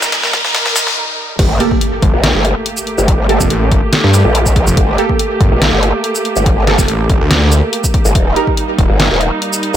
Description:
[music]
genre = heavy wobble dubstep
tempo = 142 BPM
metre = 4/4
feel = half-time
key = G minor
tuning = A4 = 440 Hz
[part]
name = clear symphonic string section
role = sustained chords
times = 0.0-9.8 s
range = Eb2 to Bb4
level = -19 LUFS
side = right 2 dB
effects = sidechain pumping, low-pass filter
[part]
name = dubstep drum kit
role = drums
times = 0.0-9.8 s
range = crash cymbal, hi-hat, shaker, snare drum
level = -16 LUFS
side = equal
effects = high-pass filter on snare, high-pass filter on hats, high-pass filter on perc, high-pass filter on cymbals, high-pass filter on room
[part]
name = electronic kick drum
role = drums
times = 0.0-8.9 s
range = none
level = -14 LUFS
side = equal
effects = none
[part]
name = riser, impact and zap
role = sound effects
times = 0.0-4.2 s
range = none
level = -20 LUFS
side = left 1 dB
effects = none
[part]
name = growl bass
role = bass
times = 1.4-9.8 s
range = Eb1 to Bb1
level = -13 LUFS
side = equal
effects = chorus, overdrive
[part]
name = orchestra-hit-like synth stab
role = stabs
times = 1.6-8.5 s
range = Bb3 to Bb4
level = -19 LUFS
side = right 4 dB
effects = built-in reverb, digital delay
[part]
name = snarling distorted saw bass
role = bass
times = 2.0-8.9 s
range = Eb1 to G2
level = -12 LUFS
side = equal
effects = overdrive
[sound]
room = light reverb, digital ambience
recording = high-pass filter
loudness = -10 LUFS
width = side -10 dB against mid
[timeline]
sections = 0.0-1.4 A section; 1.4-9.8 B section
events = build-up 0.0-1.4; drum fill 0.0-1.0; riser 0.0-1.0; break 1.0-1.4; drop 1.4-9.8; impact 1.4-3.1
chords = 0.0 Eb; 1.4 Gmadd9; 8.2 Eb

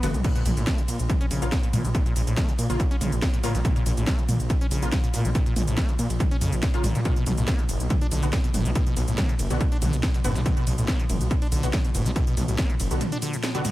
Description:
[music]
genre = driving peak-time techno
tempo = 141 BPM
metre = 4/4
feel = straight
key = unclear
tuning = A4 = 442 Hz
[part]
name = acid bass, saw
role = riff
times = 0.0-13.7 s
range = A2 to D4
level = -31 LUFS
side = equal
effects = sidechain pumping, tape echo
[part]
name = rave stab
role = stabs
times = 0.0-13.6 s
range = Db3 to F#4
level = -34 LUFS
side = left 1 dB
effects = chorus, built-in reverb, sidechain pumping, tape echo
[part]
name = detuned saw bass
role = bass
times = 0.0-13.0 s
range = F#1 to Bb2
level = -26 LUFS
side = equal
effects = sidechain pumping
[part]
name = metallic inharmonic drone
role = drone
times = 0.0-13.7 s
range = Bb2 to F3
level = -34 LUFS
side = equal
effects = chorus, built-in reverb, sidechain pumping
[part]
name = breakbeat sampler-style drum kit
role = drums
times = 0.0-13.7 s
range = ride cymbal, snare drum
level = -44 LUFS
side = right 1 dB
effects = none
[part]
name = techno drum kit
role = drums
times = 0.0-13.7 s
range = crash cymbal, hi-hat, ride cymbal, shaker, snare drum, toms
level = -31 LUFS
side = right 1 dB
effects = analog delay
[part]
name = electronic kick drum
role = drums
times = 0.2-12.7 s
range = none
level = -24 LUFS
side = equal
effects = none
[sound]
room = little or no reverb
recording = echo-heavy mix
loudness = -21 LUFS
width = side -16 dB against mid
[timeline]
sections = 0.0-13.7 A section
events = drum fill 0.0; break 13.0-13.7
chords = 0.2 Bbm; 7.1 Bm

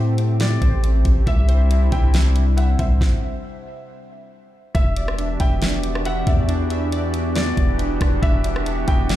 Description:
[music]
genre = hip hop, atmospheric cloud-rap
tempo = 138 BPM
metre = 4/4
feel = half-time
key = E minor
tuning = A4 = 440 Hz
[part]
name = warbly tape-like pad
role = sustained chords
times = 0.0-9.2 s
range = C3 to G4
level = -26 LUFS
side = equal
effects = chorus, built-in reverb, sidechain pumping
[part]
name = warbly lo-fi synth keys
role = arpeggios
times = 0.0-9.2 s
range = C4 to G5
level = -31 LUFS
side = equal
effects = chorus, tape echo
[part]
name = long sustained 808-style bass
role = bass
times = 0.0-9.2 s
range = E1 to A2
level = -19 LUFS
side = equal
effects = none
[part]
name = smooth R&B drum kit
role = drums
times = 0.2-9.2 s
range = hi-hat, kick drum, rim click, snare drum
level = -20 LUFS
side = equal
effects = none
[part]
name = felt-muted upright piano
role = melody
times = 0.4-9.1 s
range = D5 to G5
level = -31 LUFS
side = equal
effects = tape echo
[sound]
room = little or no reverb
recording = played on a big sound system in a bare room, large studio reverb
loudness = -17 LUFS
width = side -14 dB against mid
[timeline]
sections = 0.0-4.7 A section; 4.7-9.2 B section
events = stop 3.0-4.7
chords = 0.0 Am7; 1.3 C; 4.7 Em7

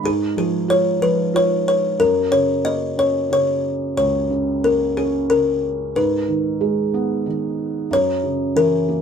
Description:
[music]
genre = children's music, lullaby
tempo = 92 BPM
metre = 3/4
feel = straight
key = unclear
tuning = A4 = 439 Hz
[part]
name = felt-muted upright piano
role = accompaniment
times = 0.0-9.0 s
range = C#2 to E#4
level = -21 LUFS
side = right 4 dB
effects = none
[part]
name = buzzing kalimba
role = melody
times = 0.1-9.0 s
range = G#4 to D#5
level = -18 LUFS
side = left 3 dB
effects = none
[sound]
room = moderate studio reverb, RT60 0.6 s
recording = band playing live in one room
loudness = -17 LUFS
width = side -7 dB against mid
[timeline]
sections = 0.0-9.0 A section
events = none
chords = 0.0 G#5; 2.0 F#; 6.0 G#m; 7.9 F#7

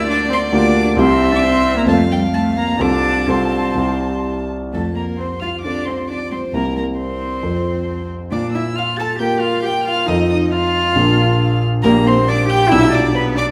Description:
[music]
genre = quick classical-period movement for piano quartet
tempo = 135 BPM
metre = 4/4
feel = rubato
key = F major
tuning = A4 = 440 Hz
[part]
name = warm violin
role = melody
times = 0.0-13.5 s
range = G5 to A6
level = -26 LUFS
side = equal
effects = none
[part]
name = warm cello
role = second line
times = 0.0-13.5 s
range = G3 to A4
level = -23 LUFS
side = equal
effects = none
[part]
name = warm violin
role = second line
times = 0.0-13.4 s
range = A4 to A5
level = -25 LUFS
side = equal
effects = none
[part]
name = dark grand piano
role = accompaniment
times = 0.0-13.5 s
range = Bb1 to Bb4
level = -20 LUFS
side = equal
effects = none
[sound]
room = wet recital hall reverb, RT60 1.4 s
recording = none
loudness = -17 LUFS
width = mono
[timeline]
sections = 0.0-4.7 A section; 4.7-13.5 B section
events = none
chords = 0.0 Gm7/D; 1.0 C; 1.9 F; 2.8 F/C; 3.8 C; 4.7 F; 6.5 C7; 7.4 F; 8.3 Bb5; 10.1 F7; 11.0 Bb; 11.8 Gm/Bb; 12.7 G7/B

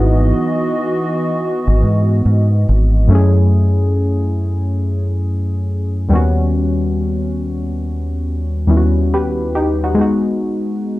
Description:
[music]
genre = hip hop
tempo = 70 BPM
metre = 4/4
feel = swing 64% on 16ths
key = unclear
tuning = A4 = 440 Hz
[part]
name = warm analog keys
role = accompaniment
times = 0.0-11.0 s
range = D#2 to B4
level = -15 LUFS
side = equal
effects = chorus, cassette tape
[part]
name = hollow soft pad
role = sustained chords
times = 0.0-3.1 s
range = E3 to D#5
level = -20 LUFS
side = right 1 dB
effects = chorus
[part]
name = deep dub fingered electric bass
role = bass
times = 0.0-3.1 s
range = G#1 to G#2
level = -12 LUFS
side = equal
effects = none
[sound]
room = moderate studio reverb, RT60 0.6 s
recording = dark, warm production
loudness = -14 LUFS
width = side -17 dB against mid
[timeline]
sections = 0.0-3.1 A section; 3.1-11.0 B section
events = none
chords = 0.0 Emaj9/G#; 3.1 F#m9; 6.1 D#7alt; 10.0 G#m7

